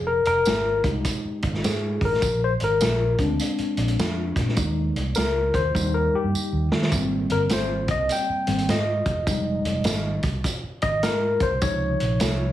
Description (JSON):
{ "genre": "uptempo 1960s-style soul", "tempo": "102 BPM", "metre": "4/4", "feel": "swing 65% on 8ths", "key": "unclear", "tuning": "A4 = 440 Hz", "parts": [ { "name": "tine electric piano", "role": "accompaniment", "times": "0.0-12.5 s", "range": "C3 to G5", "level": "-24 LUFS", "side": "left 2 dB", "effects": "medium stereo tremolo" }, { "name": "vintage muted fingered electric bass", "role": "bass", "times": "0.0-12.5 s", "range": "Fb1 to Eb3", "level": "-26 LUFS", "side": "right 1 dB", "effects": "none" }, { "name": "vintage drum kit", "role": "drums", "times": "0.3-12.4 s", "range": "hi-hat, kick drum, snare drum", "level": "-27 LUFS", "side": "right 1 dB", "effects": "none" }, { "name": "tambourine", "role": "percussion", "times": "0.5-12.4 s", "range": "none", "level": "-34 LUFS", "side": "right 5 dB", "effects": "none" } ], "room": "moderate studio reverb, RT60 0.6 s", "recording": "heavily compressed radio sound, studio reverb", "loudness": "-21 LUFS", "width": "side -12 dB against mid", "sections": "0.0-12.5 A section", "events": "tine electric piano solo 0.0-12.5; drum fill 5.8-6.9", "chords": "0.0 Fm7; 2.2 Bb7; 4.6 Ebsus4; 5.8 Eb; 6.9 Abmaj7; 9.3 Fm7; 11.6 Dbmaj7" }